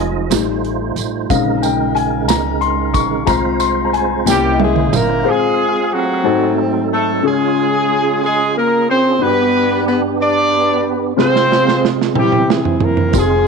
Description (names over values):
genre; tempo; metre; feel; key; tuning
slow gospel; 61 BPM (dotted quarters); 6/8; straight; F minor; A4 = 443 Hz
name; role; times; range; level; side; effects
dark grand piano; accompaniment; 0.0-13.5 s; G2 to Db6; -18 LUFS; left 12 dB; none
percussive tonewheel organ; sustained chords; 0.0-13.5 s; C3 to F5; -20 LUFS; right 14 dB; slow rotary speaker, overdrive, chorus vibrato
upright bass; bass; 0.0-5.2, 13.1-13.5 s; F1 to Db2; -22 LUFS; right 1 dB; none
modern studio drum kit; drums; 0.3-5.1, 11.2-13.3 s; hi-hat, kick drum, snare drum, toms; -18 LUFS; right 7 dB; none
tambourine; percussion; 0.3-5.2, 13.1-13.4 s; none; -26 LUFS; right 16 dB; none
mellow horn section; melody; 4.3-13.5 s; Gb3 to D5; -15 LUFS; equal; none
room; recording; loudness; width
light reverb; 1960s-style stereo with parts hard left and right; -13 LUFS; side -4 dB against mid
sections
0.0-5.3 A section; 5.3-13.5 B section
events
grand piano solo 0.0-5.3; drum fill 4.3-5.3, 11.2-13.1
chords
0.3 F7/A; 1.3 Bbm11; 3.3 Fm/C; 4.3 C7b9; 5.3 Fm; 6.2 Ab7b9; 7.2 Db; 9.2 G; 11.2 Fm/C; 12.2 C